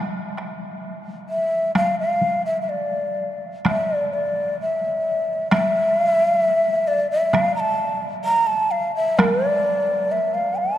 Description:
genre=japanese traditional, Japanese chamber music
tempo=65 BPM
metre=2/4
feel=rubato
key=unclear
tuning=A4 = 437 Hz
part: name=taiko ensemble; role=percussion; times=0.4-9.4 s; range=none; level=-26 LUFS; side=right 1 dB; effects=none
part: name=breathy mellow shakuhachi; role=melody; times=1.3-10.8 s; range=D5 to Bb5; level=-20 LUFS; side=equal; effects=none
room=wet cathedral reverb, RT60 6.7 s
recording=dark, warm production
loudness=-18 LUFS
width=side -12 dB against mid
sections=0.0-3.7 A section; 3.7-10.8 B section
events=none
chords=none

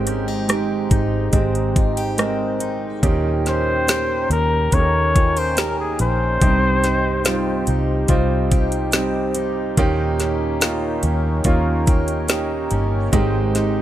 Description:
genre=pop ballad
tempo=71 BPM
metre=4/4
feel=straight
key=unclear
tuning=A4 = 441 Hz
part: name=warm grand piano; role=accompaniment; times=0.0-13.8 s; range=G2 to Bb4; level=-23 LUFS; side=right 4 dB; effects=none
part: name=sweeping resonant pad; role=sustained chords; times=0.0-13.8 s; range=Ab3 to G5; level=-28 LUFS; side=left 1 dB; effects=chorus, phaser
part: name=picked steel-string acoustic guitar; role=arpeggios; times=0.0-13.8 s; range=C3 to G4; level=-28 LUFS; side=left 5 dB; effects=none
part: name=vintage muted fingered electric bass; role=bass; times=0.0-13.8 s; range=G1 to Eb2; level=-22 LUFS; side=equal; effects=none
part: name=smooth R&B drum kit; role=drums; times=0.1-13.7 s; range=hi-hat, kick drum, rim click, snare drum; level=-19 LUFS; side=equal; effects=none
part: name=warm flugelhorn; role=melody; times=3.5-7.6 s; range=Ab4 to Db5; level=-21 LUFS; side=left 2 dB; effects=none
room=small room ambience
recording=none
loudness=-17 LUFS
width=side -12 dB against mid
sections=0.0-13.8 A section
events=none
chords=0.0 Abmaj7; 3.0 Eb7; 6.4 Cm; 9.8 Eb7; 13.1 Abmaj7

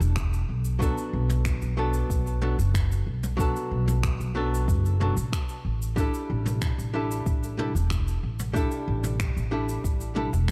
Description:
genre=sunset chillout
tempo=93 BPM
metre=4/4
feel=straight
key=B minor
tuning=A4 = 441 Hz
part: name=upright bass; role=bass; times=0.0-10.5 s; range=E1 to B1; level=-28 LUFS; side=equal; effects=none
part: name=jazz brush drum kit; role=drums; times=0.0-10.5 s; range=cabasa, finger snaps, toms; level=-37 LUFS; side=equal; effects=none
part: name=electronic kick drum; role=drums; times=0.2-10.5 s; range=none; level=-31 LUFS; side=equal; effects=none
part: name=archtop guitar, miked and amplified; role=accompaniment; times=0.8-10.3 s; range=F#3 to A4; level=-34 LUFS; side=equal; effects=vintage 12-bit sampler grit, delay
room=light reverb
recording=dark, warm production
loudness=-27 LUFS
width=mono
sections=0.0-10.5 A section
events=none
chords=0.0 N.C.; 0.8 Bm7; 6.0 A7sus4

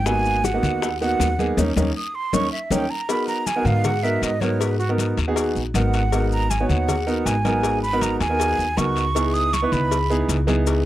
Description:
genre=Afro-Cuban jazz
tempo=158 BPM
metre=4/4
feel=straight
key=G# minor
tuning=A4 = 440 Hz
part: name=breathy mellow silver concert flute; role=second line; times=0.0-10.3 s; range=F#4 to D#6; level=-24 LUFS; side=right 3 dB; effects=slapback echo
part: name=upright bass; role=bass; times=0.0-10.9 s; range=G#1 to G#2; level=-23 LUFS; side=equal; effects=none
part: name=warm grand piano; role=accompaniment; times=0.1-10.8 s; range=A#3 to C#5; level=-24 LUFS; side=right 2 dB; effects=none
part: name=bongos and cowbell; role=percussion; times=0.1-10.9 s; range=none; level=-29 LUFS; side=left 8 dB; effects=none
part: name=congas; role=percussion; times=0.1-10.9 s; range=none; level=-30 LUFS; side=left 3 dB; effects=none
part: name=guiro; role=percussion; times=0.1-10.9 s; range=none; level=-35 LUFS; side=left 8 dB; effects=none
part: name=maracas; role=percussion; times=0.1-10.9 s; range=none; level=-33 LUFS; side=left 7 dB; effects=none
room=light reverb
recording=dry, close 1970s-style studio recording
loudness=-19 LUFS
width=side -14 dB against mid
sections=0.0-3.1 A section; 3.1-10.9 A section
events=flute solo 0.0-10.9; band accent 1.6-3.1; drum fill 2.5-3.1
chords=0.1 G#m7; 1.6 D#5; 3.1 G#m7; 9.2 C#m7

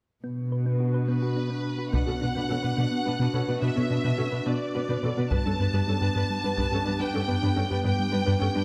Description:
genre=cinematic, hybrid orchestral and electronic film score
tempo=71 BPM (dotted quarters)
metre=6/8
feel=straight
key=B minor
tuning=A4 = 440 Hz
part: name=warbly tape-like pad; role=sustained chords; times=0.5-8.6 s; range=B3 to B4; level=-34 LUFS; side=equal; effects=chorus, built-in reverb
part: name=thumb-piano-like synth pluck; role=arpeggios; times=0.2-8.6 s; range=G3 to B4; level=-38 LUFS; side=equal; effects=chorus, digital delay
part: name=dark symphonic cello section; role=bass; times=0.2-8.6 s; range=G2 to B2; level=-32 LUFS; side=equal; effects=none
part: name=rich symphonic violin section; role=melody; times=1.1-8.6 s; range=B4 to A5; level=-35 LUFS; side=equal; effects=none
part: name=warm chamber viola section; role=accompaniment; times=1.9-8.6 s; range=C#4 to B4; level=-36 LUFS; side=equal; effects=none
part: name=smooth synth bass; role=riff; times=1.9-8.6 s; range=G2 to B3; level=-31 LUFS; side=equal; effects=none
part: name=solo taiko drums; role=drums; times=1.9-6.8 s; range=none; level=-33 LUFS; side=equal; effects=none
room=moderate scoring stage reverb, RT60 1.6 s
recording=none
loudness=-26 LUFS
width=mono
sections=0.2-1.9 A section; 1.9-8.6 B section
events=none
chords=0.2 Bm; 5.3 G

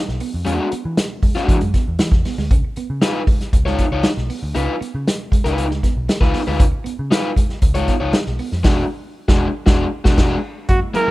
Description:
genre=funk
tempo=117 BPM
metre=4/4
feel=straight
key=unclear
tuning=A4 = 440 Hz
part: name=vintage muted picked electric bass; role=bass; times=0.1-11.1 s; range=E1 to E3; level=-23 LUFS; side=equal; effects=none
part: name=vintage drum kit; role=drums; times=0.1-11.1 s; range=crash cymbal, hi-hat, kick drum, snare drum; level=-17 LUFS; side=equal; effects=none
part: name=clean electric guitar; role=riff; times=0.2-11.1 s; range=Gb3 to Db4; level=-30 LUFS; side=right 7 dB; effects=lush chorus
part: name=raw garage guitar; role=accompaniment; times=0.5-11.1 s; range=G#3 to Db5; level=-22 LUFS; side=left 2 dB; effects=overdrive
part: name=clear trumpet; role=melody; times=10.7-11.1 s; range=Gb4 to Bb4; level=-17 LUFS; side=right 2 dB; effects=none
part: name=percussive tonewheel organ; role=sustained chords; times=10.7-11.1 s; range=Ab3 to Fb4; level=-33 LUFS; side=right 3 dB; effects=fast rotary speaker
room=studio ambience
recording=rough home demo mix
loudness=-16 LUFS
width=side -18 dB against mid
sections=0.0-10.7 A section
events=band accent 8.6-10.7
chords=0.5 E9; 2.5 Db9; 8.6 E9

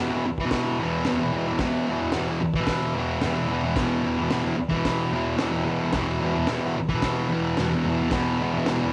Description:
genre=garage rock duo or trio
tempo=110 BPM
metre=4/4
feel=straight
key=unclear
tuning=A4 = 440 Hz
part: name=thick fuzz guitar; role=riff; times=0.0-8.9 s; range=E2 to E3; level=-26 LUFS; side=equal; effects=distortion
part: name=crunchy breakbeat drum kit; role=drums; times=0.4-8.8 s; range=hi-hat, kick drum, snare drum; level=-33 LUFS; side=equal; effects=none
room=moderate plate reverb, RT60 1.5 s, small room ambience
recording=none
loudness=-25 LUFS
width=mono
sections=0.0-8.9 A section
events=none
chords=0.0 E5

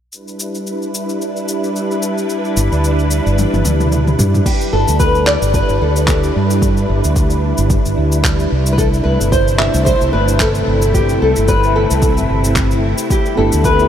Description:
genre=sunset chillout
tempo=111 BPM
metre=4/4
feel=swing 56% on 16ths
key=G major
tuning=A4 = 439 Hz
part: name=soft string machine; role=sustained chords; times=0.1-13.9 s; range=C3 to B4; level=-19 LUFS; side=equal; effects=ensemble chorus
part: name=deep house drum kit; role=drums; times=0.1-13.9 s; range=cabasa, crash cymbal, handclaps, toms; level=-22 LUFS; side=left 1 dB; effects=overdrive
part: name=mellow fretless electric bass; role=bass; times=2.6-13.9 s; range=G1 to G2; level=-16 LUFS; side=equal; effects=wide subtle chorus
part: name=flamenco guitar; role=melody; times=4.5-13.9 s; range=G4 to E5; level=-17 LUFS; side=left 1 dB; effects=lush chorus, tape echo
part: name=electronic kick drum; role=drums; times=4.5-13.8 s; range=none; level=-17 LUFS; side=equal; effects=overdrive
part: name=mellow FM electric piano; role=accompaniment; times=13.4-13.9 s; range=A3 to G4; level=-18 LUFS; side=right 1 dB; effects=chorus, auto-pan
room=moderate huge ambient reverb, RT60 8.0 s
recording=dreamy mix soaked in reverb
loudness=-12 LUFS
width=side -9 dB against mid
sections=0.1-4.5 A section; 4.5-13.9 B section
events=drum fill 3.4-4.5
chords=0.1 G6; 8.5 C69; 13.1 G6

